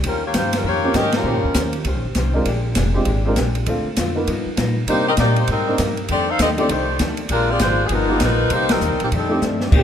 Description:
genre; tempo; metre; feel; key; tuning
jazz, big band swing; 198 BPM; 4/4; swing 62% on 8ths; Bb mixolydian; A4 = 439 Hz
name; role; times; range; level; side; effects
vintage hollow-body jazz guitar; accompaniment; 0.0-9.8 s; F2 to C5; -27 LUFS; left 3 dB; none
upright bass; bass; 0.0-9.8 s; F1 to C3; -22 LUFS; equal; none
open jazz drum kit; drums; 0.0-9.8 s; crash cymbal, hi-hat, kick drum, ride cymbal, snare drum; -23 LUFS; equal; none
bright saxophone section; melody; 0.1-1.7, 4.9-9.4 s; Eb3 to F5; -20 LUFS; left 2 dB; none
warm upright piano; accompaniment; 0.8-9.7 s; Ab3 to C5; -24 LUFS; right 1 dB; none
warm trombone section; sustained chords; 9.7-9.8 s; D3 to G4; -20 LUFS; right 2 dB; none
room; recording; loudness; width
moderate concert hall reverb, RT60 2.1 s; minimal, uncompressed stereo recording; -17 LUFS; side -9 dB against mid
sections
0.0-9.7 A section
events
band accent 1.1, 8.7; drum fill 9.4-9.7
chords
0.0 Eb13; 2.5 Bb13; 3.7 Dm7; 4.3 G7alt; 4.9 Cm7; 6.1 F13; 7.3 Bb13; 7.9 G7alt; 8.5 Cm7; 9.1 F13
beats
| 0.04 0.35 0.65 0.95 | 1.25 1.56 1.86 2.16 | 2.46 2.77 3.07 3.37 | 3.67 3.98 4.28 4.58 | 4.88 5.18 5.49 5.79 | 6.09 6.39 6.70 7.00 | 7.30 7.60 7.91 8.21 | 8.51 8.81 9.12 9.42 | 9.72

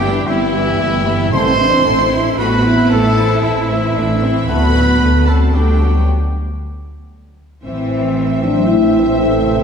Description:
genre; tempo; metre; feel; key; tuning
cinematic, epic orchestral film score; 114 BPM; 3/4; straight; A dorian; A4 = 440 Hz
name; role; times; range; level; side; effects
rich symphonic violin section; melody; 0.0-9.6 s; E5 to C6; -25 LUFS; left 4 dB; none
warm symphonic violin section; second line; 0.0-9.6 s; C4 to E5; -26 LUFS; left 2 dB; none
warm symphonic viola section; accompaniment; 0.0-9.6 s; D3 to C5; -24 LUFS; right 2 dB; none
dark French horn section; sustained chords; 0.0-9.6 s; E3 to E4; -18 LUFS; left 1 dB; none
warm trumpet; stabs; 0.0-9.6 s; E4 to E5; -19 LUFS; right 1 dB; none
rich symphonic cello section; bass; 0.0-9.6 s; C3 to F#4; -22 LUFS; right 2 dB; none
rich symphonic double bass section; bass; 0.0-9.6 s; G1 to D2; -17 LUFS; equal; none
clear trombone section; sustained chords; 1.3-4.7, 7.6-9.6 s; D3 to C4; -26 LUFS; right 2 dB; none
timpani; percussion; 1.3-2.1 s; A2; -24 LUFS; right 1 dB; none
room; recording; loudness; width
wet scoring stage reverb, RT60 1.9 s; heard from further back in the room; -12 LUFS; side -6 dB against mid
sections
0.0-7.6 A section; 7.6-9.6 B section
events
break 6.1-7.6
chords
0.0 Em/G; 1.3 Am; 4.5 D; 7.6 Am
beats
0.27 0.80 | 1.33 1.85 2.38 | 2.90 3.43 3.96 | 4.48 5.01 5.54 | 6.06 6.59 7.12 | 7.64 8.17 8.70 | 9.22

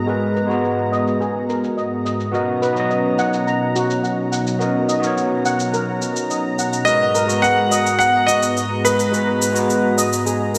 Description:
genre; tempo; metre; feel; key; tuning
sunset chillout; 106 BPM; 4/4; straight; G# minor; A4 = 438 Hz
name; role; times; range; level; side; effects
overdriven tine electric piano; accompaniment; 0.0-10.6 s; G#3 to A#5; -24 LUFS; equal; digital delay
lush unison pad; sustained chords; 0.0-10.6 s; G#2 to A#5; -25 LUFS; equal; chorus
steel pan; arpeggios; 0.0-10.6 s; F#4 to A#5; -27 LUFS; equal; low-pass filter, digital delay
cabasa; drums; 0.1-10.6 s; none; -29 LUFS; equal; overdrive, low-pass filter on hats, low-pass filter on perc, low-pass filter on snare, low-pass filter on room
bright grand piano; melody; 6.8-9.9 s; B4 to F#5; -20 LUFS; equal; digital delay
room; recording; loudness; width
wet lush hall reverb, RT60 1.8 s, small room ambience; bright 1980s-style digital production; -19 LUFS; mono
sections
0.0-10.6 A section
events
filter sweep on steel pan 0.0-10.6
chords
0.0 G#m9; 2.3 Bmaj7; 6.9 G#m9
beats
| 0.07 0.64 1.21 1.77 | 2.34 2.90 3.47 4.04 | 4.60 5.17 5.73 6.30 | 6.87 7.43 8.00 8.56 | 9.13 9.70 10.26

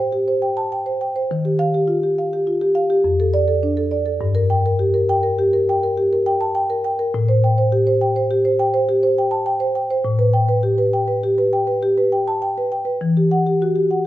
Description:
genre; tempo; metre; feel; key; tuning
classical, contemporary piece for solo marimba; 103 BPM; 5/4; straight; G major; A4 = 440 Hz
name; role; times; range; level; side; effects
marimba with soft mallets; solo; 0.0-14.1 s; F2 to A5; -16 LUFS; equal; none
room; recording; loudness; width
wet recital hall reverb, RT60 1.5 s; minimal, uncompressed stereo recording; -16 LUFS; side -14 dB against mid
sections
0.0-14.1 A section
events
none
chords
0.0 Am7; 1.3 Ebadd9; 3.0 F6; 4.2 Gm; 7.1 Am7; 10.1 Gadd9/A; 13.0 Emadd9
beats
0.13 0.72 | 1.30 1.89 2.47 3.05 3.63 | 4.21 4.79 5.38 5.96 6.55 | 7.13 7.71 8.29 8.88 9.47 | 10.05 10.65 11.23 11.82 12.41 | 13.01 13.60

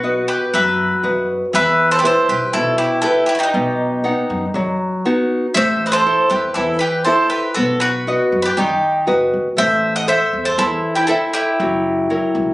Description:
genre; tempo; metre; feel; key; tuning
greek folk, Greek bouzouki band; 119 BPM; 4/4; straight; E harmonic minor; A4 = 440 Hz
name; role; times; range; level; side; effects
Greek bouzouki; melody; 0.0-12.5 s; F#4 to F#5; -19 LUFS; right 1 dB; none
bowl-back mandolin; second line; 0.0-12.5 s; D#4 to D#5; -20 LUFS; equal; none
nylon-string guitar; accompaniment; 0.0-12.5 s; B2 to F#5; -19 LUFS; left 1 dB; none
upright bass; bass; 0.0-12.5 s; F#1 to F#2; -27 LUFS; equal; none
room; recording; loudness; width
moderate small room reverb, RT60 0.5 s; recorded on a phone in the room, club reverb, nothing above 11.0 kHz; -14 LUFS; side -18 dB against mid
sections
0.0-1.5 A section; 1.5-12.5 B section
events
none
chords
0.0 B; 1.5 Em; 3.5 B; 5.6 Am; 7.6 B; 9.6 Am; 11.6 F#7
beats
0.04 0.55 1.05 | 1.55 2.05 2.55 3.05 | 3.55 4.05 4.55 5.05 | 5.56 6.06 6.56 7.07 | 7.57 8.07 8.57 9.08 | 9.58 10.09 10.59 11.09 | 11.60 12.10

